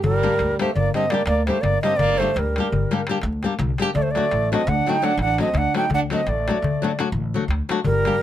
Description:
balkan folk, Balkan wedding band; 338 BPM (eighths); 11/8; straight; G harmonic minor; A4 = 440 Hz
bright reedy ney; melody; 0.0-8.2 s; Bb4 to G5; -22 LUFS; right 2 dB
upright bass; bass; 0.0-8.1 s; G1 to D2; -25 LUFS; equal
darbuka; percussion; 0.0-8.1 s; -27 LUFS; left 5 dB
clear French horn; second line; 0.1-8.2 s; G3 to Eb4; -28 LUFS; right 5 dB
flamenco guitar; accompaniment; 0.2-8.2 s; F#3 to G4; -24 LUFS; left 4 dB
light reverb; close, detailed microphones; -19 LUFS; side -11 dB against mid
0.0-8.2 A section
drum fill 7.1-7.9
0.0 Gm; 4.0 D

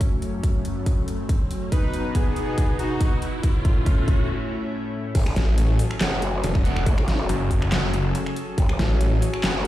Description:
heavy wobble dubstep; 140 BPM; 4/4; swing 53% on 16ths, half-time; F# minor from 5.2 s; A4 = 440 Hz
lush unison pad; sustained chords; 0.0-9.7 s; F#2 to A4; -29 LUFS; left 1 dB; chorus, sidechain pumping
dubstep drum kit; drums; 0.0-9.7 s; crash cymbal, finger snaps, handclaps, hi-hat, snare drum; -29 LUFS; equal; overdrive
electronic kick drum; drums; 0.0-8.7 s; -22 LUFS; equal; overdrive
riser; sound effects; 0.1-4.3 s; -36 LUFS; left 1 dB
soft supersaw; melody; 1.7-3.1 s; B3 to B4; -30 LUFS; equal; digital delay
growl bass; bass; 5.2-9.7 s; F#1 to A1; -25 LUFS; equal; chorus, overdrive
snarling distorted saw bass; bass; 5.4-9.2 s; E1 to A1; -21 LUFS; equal; distortion, overdrive
fuzz guitar; stabs; 6.0-9.6 s; A3 to F#5; -32 LUFS; right 2 dB; distortion, digital delay
light reverb; played on a big sound system in a bare room, large studio reverb; -20 LUFS; side -14 dB against mid
0.0-5.2 A section; 5.2-9.7 B section
build-up 0.0-5.2; riser 0.1-4.3; drum fill 1.7-4.3; break 4.3-5.2; drop 5.2-9.7
0.0 F#m; 1.7 B; 3.4 A; 5.2 F#madd9

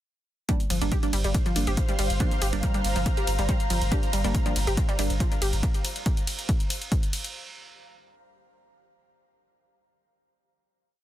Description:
driving peak-time techno; 140 BPM; 4/4; straight; G minor; A4 = 440 Hz
wide unison pluck; riff; 0.5-5.5 s; F3 to G4; -32 LUFS; equal; overdrive, sidechain pumping, ping-pong delay
filtered dub chord stab; stabs; 0.5-5.1 s; G3 to D4; -34 LUFS; right 3 dB; phaser, vintage 12-bit sampler grit, sidechain pumping, ping-pong delay
electronic kick drum; drums; 0.5-7.0 s; -26 LUFS; equal
punchy analog drum machine; drums; 0.5-7.3 s; hi-hat, ride cymbal; -33 LUFS; equal; sidechain pumping on hats, sidechain pumping on cymbals
ethereal airy pad; texture; 1.2-5.6 s; C5 to Bb5; -34 LUFS; equal; ensemble chorus, built-in reverb, tremolo, sidechain pumping
saturated sub bass; bass; 0.7-5.6 s; G1; -27 LUFS; equal; sidechain pumping, low-pass filter
little or no reverb; dense, heavily limited modern master; -23 LUFS; side -13 dB against mid
0.5-7.3 drop
drop 0.5-7.3
0.5 Gm

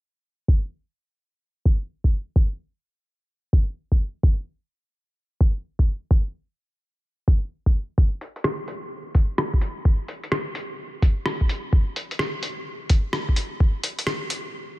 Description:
future garage; 128 BPM; 4/4; swing 65% on 16ths
electronic kick drum; drums; 0.5-13.7 s; -18 LUFS; equal; overdrive
lo-fi sampler-style drum kit; drums; 8.2-14.4 s; hi-hat, rim click; -28 LUFS; equal; overdrive
little or no reverb; dense, heavily limited modern master, low-pass filter; -21 LUFS; side -18 dB against mid
0.5-14.8 A section
filter sweep 0.5-14.8; stop 14.5

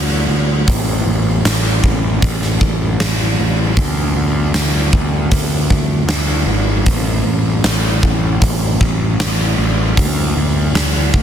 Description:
rock, shoegaze and dream pop; 78 BPM; 4/4; straight; A4 = 438 Hz
fuzz picked electric bass; bass; 0.0-11.2 s; G#1 to D2; -16 LUFS; equal; overdrive
huge arena drum kit; drums; 0.7-11.2 s; hi-hat, kick drum, snare drum; -16 LUFS; equal; soft clipping on kick, soft clipping on snare
little or no reverb; dense, heavily limited modern master; -13 LUFS; side -9 dB against mid
0.0-11.2 A section

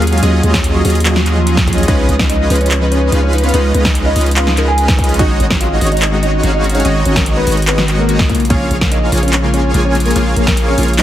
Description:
future bass; 145 BPM; 4/4; half-time; A4 = 439 Hz
mellow electric guitar; melody; 0.0-11.0 s; F3 to Ab5; -19 LUFS; left 1 dB; sidechain pumping, ping-pong delay
glassy digital keys; accompaniment; 0.0-11.0 s; Db3 to Eb5; -20 LUFS; left 2 dB; chorus, sidechain pumping
supersaw chords; riff; 0.0-11.0 s; Gb3 to Ab5; -18 LUFS; right 1 dB; sidechain pumping
long sustained 808-style bass; bass; 0.0-11.0 s; Ab1 to Eb2; -15 LUFS; equal; sidechain pumping
big-room dance drum kit; drums; 0.0-11.0 s; handclaps, hi-hat, snare drum; -18 LUFS; equal
electronic kick drum; drums; 0.5-10.6 s; -16 LUFS; equal
light reverb, digital ambience; heavily compressed radio sound; -10 LUFS; side -12 dB against mid
0.0-11.0 A section
0.0 Ebm11; 1.9 Db9; 5.2 Ab7sus4; 8.3 Bbm7

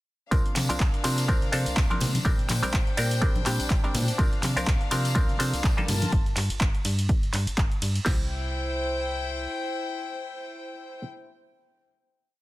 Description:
filtered disco house; 124 BPM; 4/4; swing 57% on 16ths; C mixolydian; A4 = 440 Hz
muted clav; accompaniment; 0.3-11.0 s; F3 to C5; -30 LUFS; equal; phaser, vintage 12-bit sampler grit, sidechain pumping
rich chamber string section; sustained chords; 0.3-11.0 s; Bb3 to A5; -33 LUFS; left 2 dB; sidechain pumping
slap-like FM bass; bass; 0.3-9.5 s; G1 to C3; -28 LUFS; equal; tube saturation, sidechain pumping
punchy analog drum machine; drums; 0.3-8.2 s; crash cymbal, kick drum, snare drum; -24 LUFS; equal
punchy analog drum machine; drums; 0.3-8.0 s; handclaps, hi-hat, ride cymbal; -32 LUFS; equal; sidechain pumping on hats, sidechain pumping on cymbals
tambourine and congas; percussion; 0.3-6.1 s; -33 LUFS; left 2 dB; sidechain pumping on perc
digital ambience; dense, heavily limited modern master; -23 LUFS; side -18 dB against mid
0.3-8.1 drop; 8.1-11.9 final chord
drop 0.3-8.1
0.3 C9sus4; 2.3 Bb69; 4.2 C9sus4; 5.9 Gm9; 8.1 C

